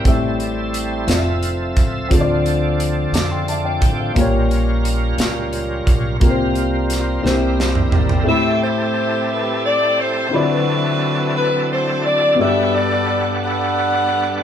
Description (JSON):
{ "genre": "slow gospel", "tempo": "58 BPM (dotted quarters)", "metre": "6/8", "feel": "straight", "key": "G major from 8.3 s", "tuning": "A4 = 440 Hz", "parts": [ { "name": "dark grand piano", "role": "accompaniment", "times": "0.0-14.4 s", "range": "G2 to D6", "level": "-21 LUFS", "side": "left 3 dB", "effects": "none" }, { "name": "bright tonewheel organ", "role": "sustained chords", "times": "0.0-14.4 s", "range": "F3 to G5", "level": "-23 LUFS", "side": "right 2 dB", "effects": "slow rotary speaker, overdrive, chorus vibrato" }, { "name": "upright bass", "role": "bass", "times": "0.0-8.2 s", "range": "F1 to F2", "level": "-22 LUFS", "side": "right 1 dB", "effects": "none" }, { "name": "modern studio drum kit", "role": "drums", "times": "0.1-8.3 s", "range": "hi-hat, kick drum, snare drum, toms", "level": "-19 LUFS", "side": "right 1 dB", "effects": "none" }, { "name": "clear saxophone section", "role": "melody", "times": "7.3-14.4 s", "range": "E4 to F#5", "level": "-19 LUFS", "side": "equal", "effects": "none" } ], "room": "moderate large studio reverb, RT60 1.1 s", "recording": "band playing live in one room", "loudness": "-15 LUFS", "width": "side -9 dB against mid", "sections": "0.0-8.3 A section; 8.3-14.4 B section", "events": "tonewheel organ fill 3.1-4.2; drum fill 7.2-8.3", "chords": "0.1 Am7; 1.1 Fmaj7; 2.1 Dm7; 4.2 Bbm6; 6.2 C7sus4; 7.2 C7; 8.3 Am9; 10.3 D13; 12.4 Gmaj9", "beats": "| 0.05 1.08 | 2.11 3.13 | 4.16 5.19 | 6.21 7.24 | 8.27 9.30 | 10.32 11.35 | 12.38 13.41" }